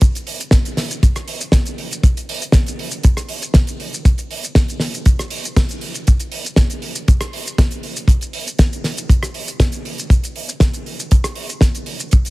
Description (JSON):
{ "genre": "nu-disco", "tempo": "119 BPM", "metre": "4/4", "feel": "straight", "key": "none", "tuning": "none", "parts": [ { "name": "damped 70s drum kit", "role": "drums", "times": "0.0-12.3 s", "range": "hi-hat, rim click, shaker, snare drum", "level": "-21 LUFS", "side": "right 1 dB", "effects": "none" }, { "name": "kick drum", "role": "drums", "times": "0.0-12.2 s", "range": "none", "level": "-13 LUFS", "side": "equal", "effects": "none" } ], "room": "little or no reverb", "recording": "heavily compressed radio sound", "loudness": "-15 LUFS", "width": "side -21 dB against mid", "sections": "0.0-12.3 A section", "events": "none", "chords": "none" }